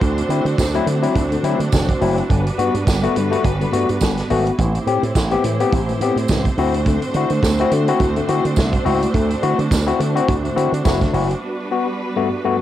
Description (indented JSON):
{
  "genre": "disco",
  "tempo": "105 BPM",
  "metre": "4/4",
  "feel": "swing 56% on 16ths",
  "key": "unclear",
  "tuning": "A4 = 440 Hz",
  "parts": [
    { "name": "barky tine electric piano", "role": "accompaniment", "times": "0.0-12.6 s", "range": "G2 to G4", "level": "-20 LUFS", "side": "left 5 dB", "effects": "overdrive, cassette tape" },
    { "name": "clear symphonic string section", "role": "sustained chords", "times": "0.0-12.6 s", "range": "F#3 to C5", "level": "-23 LUFS", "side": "right 2 dB", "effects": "cassette tape" },
    { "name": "slap bass with an envelope filter", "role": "bass", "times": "0.0-11.3 s", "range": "F1 to D3", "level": "-21 LUFS", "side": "right 2 dB", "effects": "none" },
    { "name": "vintage drum kit", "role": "drums", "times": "0.0-11.4 s", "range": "hi-hat, kick drum, snare drum", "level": "-22 LUFS", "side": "right 2 dB", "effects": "cassette tape" },
    { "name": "tambourine", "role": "percussion", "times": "0.6-11.0 s", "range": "none", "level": "-32 LUFS", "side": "right 12 dB", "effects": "none" }
  ],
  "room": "light reverb, small room ambience",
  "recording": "home recording on cassette",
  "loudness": "-16 LUFS",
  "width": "side -12 dB against mid",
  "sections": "0.0-12.6 A section",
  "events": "break 11.4-12.6",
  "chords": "0.0 D7; 2.3 Gmaj7; 4.6 Am7; 6.6 D7; 11.4 Gmaj7"
}